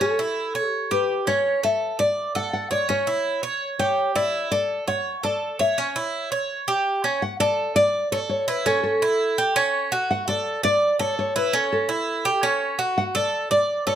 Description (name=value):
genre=latin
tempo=167 BPM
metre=4/4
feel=straight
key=D major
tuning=A4 = 440 Hz
part: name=nylon-string guitar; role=melody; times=0.0-14.0 s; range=A4 to F#5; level=-24 LUFS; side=left 2 dB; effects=none
part: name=Cuban tres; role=arpeggios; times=0.0-14.0 s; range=C#4 to D5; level=-23 LUFS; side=right 3 dB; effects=none
room=light reverb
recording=close, detailed microphones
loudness=-20 LUFS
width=side -10 dB against mid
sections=0.0-7.2 A section; 7.2-14.0 B section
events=none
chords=0.0 A7; 1.4 D5; 2.9 C#dim; 4.3 Dmaj7; 5.8 C#dim; 7.2 D5; 8.7 A; 10.1 D5; 11.5 A7; 13.0 D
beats=| 0.01 0.37 0.73 1.09 | 1.45 1.81 2.17 2.53 | 2.89 3.25 3.61 3.97 | 4.33 4.70 5.06 5.42 | 5.78 6.14 6.50 6.86 | 7.22 7.58 7.94 8.30 | 8.66 9.02 9.38 9.74 | 10.10 10.46 10.82 11.18 | 11.54 11.89 12.25 12.61 | 12.97 13.33 13.69